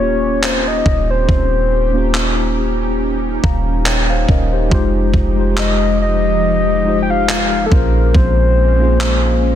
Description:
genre	contemporary R&B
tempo	70 BPM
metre	4/4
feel	swing 54% on 16ths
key	unclear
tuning	A4 = 440 Hz
part	soft octave-layered synth lead	melody	0.0-9.6 s	A4 to G5	-18 LUFS	left 2 dB	chorus, tape echo
part	mellow tine electric piano	accompaniment	0.0-9.6 s	Ab3 to Bb5	-20 LUFS	left 2 dB	medium stereo tremolo
part	ethereal airy pad	sustained chords	0.0-9.6 s	F3 to G4	-23 LUFS	equal	ensemble chorus, built-in reverb
part	warm 808-style bass	bass	0.0-9.6 s	Eb1 to Bb1	-17 LUFS	equal	none
part	gated 80s digital drum machine	drums	0.4-9.2 s	handclaps, kick drum	-18 LUFS	equal	gated reverb, soft clipping on snare
room	little or no reverb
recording	dense, heavily limited modern master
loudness	-12 LUFS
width	side -10 dB against mid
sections	0.0-9.6 A section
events	none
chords	0.0 Eb13; 4.7 Fm9; 7.7 Bbm9

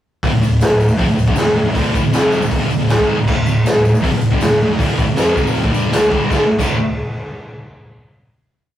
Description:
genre	garage rock duo or trio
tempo	158 BPM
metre	4/4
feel	straight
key	unclear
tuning	A4 = 440 Hz
part	thick fuzz guitar	riff	0.2-6.7 s	D2 to G#3	-16 LUFS	equal	distortion
part	raw garage drum kit	drums	0.2-6.7 s	crash cymbal, hi-hat, kick drum, snare drum	-16 LUFS	equal	none
part	tambourine	percussion	0.2-6.8 s	none	-37 LUFS	left 4 dB	none
room	moderate studio reverb, RT60 0.6 s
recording	rough rehearsal-room recording, warm saturation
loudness	-13 LUFS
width	side -12 dB against mid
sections	0.2-6.3 riff; 6.3-7.8 final chord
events	none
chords	0.2 D5

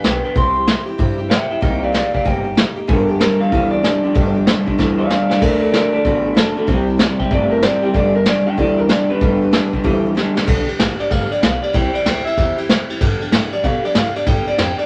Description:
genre	rockabilly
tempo	190 BPM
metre	4/4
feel	swing 64% on 8ths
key	G mixolydian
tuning	A4 = 440 Hz
part	electric guitar through a small old amp	melody	0.0-14.9 s	G4 to C6	-22 LUFS	equal	spring reverb
part	picked steel-string acoustic guitar	accompaniment	0.0-14.9 s	G2 to A4	-26 LUFS	equal	none
part	upright bass	bass	0.0-14.8 s	G1 to B2	-27 LUFS	equal	none
part	vintage brush drum kit	drums	0.0-14.8 s	crash cymbal, hi-hat, kick drum, ride cymbal, snare drum	-20 LUFS	equal	none
part	electric guitar through a small old amp	riff	2.9-10.5 s	G2 to B3	-20 LUFS	equal	spring reverb
room	wet small room reverb, RT60 0.5 s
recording	none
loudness	-16 LUFS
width	mono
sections	0.0-10.5 A section; 10.5-14.9 B section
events	clean electric guitar solo 0.0-10.5; drum fill 4.8-5.4, 10.2-10.5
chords	0.4 C; 1.6 Cm7; 2.9 G; 5.4 D; 6.7 C; 8.0 G; 11.7 C; 13.0 G

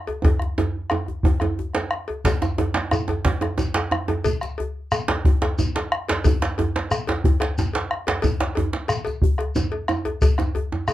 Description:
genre	west african traditional, West African drum ensemble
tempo	120 BPM (dotted quarters)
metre	12/8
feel	straight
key	none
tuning	none
part	cowbell	percussion	0.1-10.9 s	none	-28 LUFS	left 2 dB	none
part	djembe	percussion	0.1-10.7 s	none	-26 LUFS	left 3 dB	none
part	bombo	percussion	0.2-10.9 s	none	-22 LUFS	equal	none
part	djembe	percussion	0.2-10.9 s	none	-24 LUFS	right 3 dB	none
part	shekere	percussion	2.3-10.9 s	none	-30 LUFS	left 2 dB	none
room	moderate small room reverb, RT60 0.6 s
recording	dark, warm production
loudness	-20 LUFS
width	side -14 dB against mid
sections	0.0-2.3 A section; 2.3-10.9 B section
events	drum fill 0.2-2.3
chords	none

